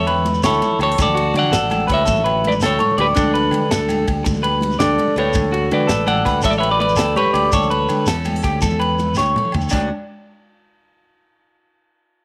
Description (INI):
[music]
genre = highlife guitar band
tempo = 110 BPM (dotted quarters)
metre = 12/8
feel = straight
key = D major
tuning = A4 = 441 Hz
[part]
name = clean electric guitar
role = melody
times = 0.0-9.3 s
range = D4 to F#5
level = -22 LUFS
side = equal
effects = none
[part]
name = picked steel-string acoustic guitar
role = accompaniment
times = 0.0-9.9 s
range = A2 to B4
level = -33 LUFS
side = equal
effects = none
[part]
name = electric guitar at the edge of break-up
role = arpeggios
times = 0.0-9.9 s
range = D4 to D5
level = -23 LUFS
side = equal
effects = slapback echo
[part]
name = fingered electric bass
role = bass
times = 0.0-9.9 s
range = A1 to D3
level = -25 LUFS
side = equal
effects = none
[part]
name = tight funk drum kit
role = drums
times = 0.1-9.8 s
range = crash cymbal, kick drum, ride cymbal, snare drum, toms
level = -28 LUFS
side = equal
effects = none
[part]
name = agogo bells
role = percussion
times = 0.1-9.8 s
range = none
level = -33 LUFS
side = equal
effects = none
[part]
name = congas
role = percussion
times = 0.3-9.9 s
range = none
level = -28 LUFS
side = equal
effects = none
[part]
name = shekere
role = percussion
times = 0.3-9.9 s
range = none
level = -30 LUFS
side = equal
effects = none
[sound]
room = light reverb, small room reverb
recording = none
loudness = -17 LUFS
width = mono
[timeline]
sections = 0.0-9.7 A section; 9.7-11.9 B section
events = drum fill 9.2-9.7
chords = 0.0 A; 1.0 Dmaj7; 3.2 Gadd9/D; 5.4 Dmaj7; 7.5 A/D; 9.7 D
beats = 0.43 | 0.98 1.53 2.08 2.62 | 3.17 3.71 4.26 4.81 | 5.35 5.90 6.45 6.99 | 7.54 8.08 8.63 9.17 | 9.72